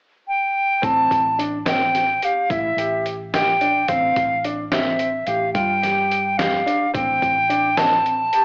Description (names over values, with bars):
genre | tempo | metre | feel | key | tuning
progressive instrumental, band music in an uneven meter | 216 BPM (eighths) | 11/8 | straight | A minor | A4 = 441 Hz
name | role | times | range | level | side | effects
silver concert flute | melody | 0.3-8.4 s | E5 to A5 | -21 LUFS | equal | cassette tape
bright grand piano | arpeggios | 0.8-8.4 s | C4 to G4 | -29 LUFS | equal | cassette tape, analog delay
hollow-body short-scale fingered electric bass | bass | 0.8-8.3 s | A1 to G2 | -35 LUFS | equal | none
trip hop sampler-style drum kit | drums | 0.8-8.4 s | hi-hat, kick drum, snare drum | -29 LUFS | equal | overdrive, cassette tape
room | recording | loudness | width
moderate digital room reverb, RT60 1.1 s, small room ambience | home recording on cassette, AM radio sound | -20 LUFS | mono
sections
0.8-8.4 A section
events
none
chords
0.0 N.C.; 0.8 Am7; 3.9 D7sus4/A (rootless); 6.9 Am7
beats
0.00 0.28 0.55 | 0.83 1.11 1.39 1.67 1.94 2.22 2.50 2.78 3.06 3.33 3.61 | 3.89 4.17 4.44 4.72 5.00 5.28 5.55 5.83 6.11 6.39 6.67 | 6.94 7.22 7.50 7.78 8.05 8.33